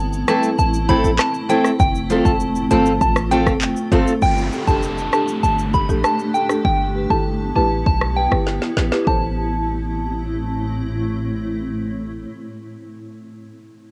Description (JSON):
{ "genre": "dancehall", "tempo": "99 BPM", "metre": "4/4", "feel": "straight", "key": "A minor", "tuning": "A4 = 440 Hz", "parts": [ { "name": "granular cloud pad", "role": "sustained chords", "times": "0.0-12.3 s", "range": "A2 to G4", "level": "-28 LUFS", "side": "equal", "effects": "built-in reverb, sidechain pumping, cassette tape" }, { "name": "hard-hitting 808-style bass", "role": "bass", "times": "0.0-12.3 s", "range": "F1 to B1", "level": "-25 LUFS", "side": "equal", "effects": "none" }, { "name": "afro-pop drum kit", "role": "drums", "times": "0.1-9.2 s", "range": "handclaps, hi-hat, kick drum, rim click, shaker, snare drum", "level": "-24 LUFS", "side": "equal", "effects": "cassette tape" }, { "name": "soft synth bell", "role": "melody", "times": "0.3-10.9 s", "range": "G5 to B5", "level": "-24 LUFS", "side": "equal", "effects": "chorus, phaser, cassette tape, analog delay" }, { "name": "folk marimba with medium mallets", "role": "accompaniment", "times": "0.3-12.3 s", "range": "C4 to C5", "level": "-26 LUFS", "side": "equal", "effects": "cassette tape" }, { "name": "picked steel-string acoustic guitar", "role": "arpeggios", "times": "0.3-4.1 s", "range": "A3 to A4", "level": "-23 LUFS", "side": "equal", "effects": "cassette tape" }, { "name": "downlifter", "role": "sound effects", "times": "4.2-9.1 s", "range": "none", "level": "-35 LUFS", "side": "equal", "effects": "none" } ], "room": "light reverb", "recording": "home recording on cassette", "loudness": "-19 LUFS", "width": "mono", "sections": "0.0-4.2 A section; 4.2-9.1 B section; 9.1-11.5 C section", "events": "drum fill 8.5-9.1", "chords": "0.0 Am; 1.8 F; 4.2 Gsus2; 6.6 Em/G; 9.1 Am", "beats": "0.59 1.19 | 1.80 2.40 3.01 3.62 | 4.22 4.83 5.43 6.04 | 6.65 7.25 7.86 8.46 | 9.07 9.68 10.28 10.89" }